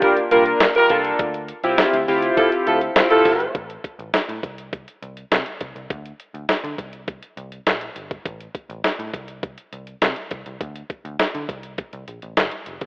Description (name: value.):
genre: early-eighties boogie funk.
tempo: 102 BPM.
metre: 4/4.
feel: straight.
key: unclear.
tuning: A4 = 441 Hz.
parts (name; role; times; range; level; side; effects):
warm horn section; second line; 0.0-3.5 s; F3 to Bb4; -17 LUFS; right 1 dB; none.
chorused polysynth; accompaniment; 0.0-3.3 s; Bb3 to Bb4; -19 LUFS; equal; none.
clean 12-bit digital drum machine; drums; 0.0-12.9 s; handclaps, hi-hat, kick drum, snare drum; -21 LUFS; equal; none.
vintage muted picked electric bass; bass; 0.3-12.9 s; F1 to D3; -35 LUFS; equal; none.
room: light reverb, digital ambience.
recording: rough home demo mix, telephone sound.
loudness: -17 LUFS.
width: side -24 dB against mid.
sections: 0.0-3.5 A section; 3.5-12.9 B section.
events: none.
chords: 0.0 C7sus4; 1.2 Dm11; 3.5 N.C.; 6.8 C5; 8.3 N.C..